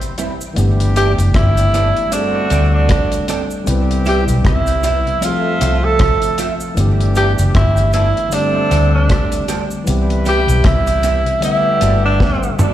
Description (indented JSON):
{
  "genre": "lovers rock reggae",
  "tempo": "77 BPM",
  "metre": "4/4",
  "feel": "swing 59% on 16ths",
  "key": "G major",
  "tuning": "A4 = 440 Hz",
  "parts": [
    { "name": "warm tenor saxophone", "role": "melody", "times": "0.0-12.6 s", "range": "C4 to A4", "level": "-18 LUFS", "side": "right 1 dB", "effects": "tape echo, slapback echo" },
    { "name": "tine electric piano", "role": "accompaniment", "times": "0.0-12.7 s", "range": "D3 to F#5", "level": "-22 LUFS", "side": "left 2 dB", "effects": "dub echo" },
    { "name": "deep reggae drum kit", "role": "drums", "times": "0.0-12.7 s", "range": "hi-hat, kick drum, rim click, snare drum, toms", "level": "-17 LUFS", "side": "equal", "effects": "none" },
    { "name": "cabasa", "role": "percussion", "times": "0.0-12.7 s", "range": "none", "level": "-33 LUFS", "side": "right 3 dB", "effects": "dub echo" },
    { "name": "electric guitar through a small old amp", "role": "stabs", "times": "0.2-12.7 s", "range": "G3 to E5", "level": "-26 LUFS", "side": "right 6 dB", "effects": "analog chorus, dub echo, slapback echo" },
    { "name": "warm horn section", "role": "second line", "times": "0.6-12.6 s", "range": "D3 to E5", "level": "-26 LUFS", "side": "equal", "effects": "slapback echo" },
    { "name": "vintage muted fingered electric bass", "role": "bass", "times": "0.6-12.2 s", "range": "F#1 to D2", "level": "-14 LUFS", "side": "equal", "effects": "none" }
  ],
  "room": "light reverb",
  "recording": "live gig heard through the venue's PA, recital hall reverb",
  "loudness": "-12 LUFS",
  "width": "side -12 dB against mid",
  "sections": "0.6-12.7 A section",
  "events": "drum fill 12.2-12.7",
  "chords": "0.0 Cmaj7; 0.6 G69; 2.1 D7sus4; 3.7 Cmaj7; 5.2 Fmaj7; 6.8 G69; 8.3 D7sus4; 9.9 Cmaj7; 11.4 Gmaj9"
}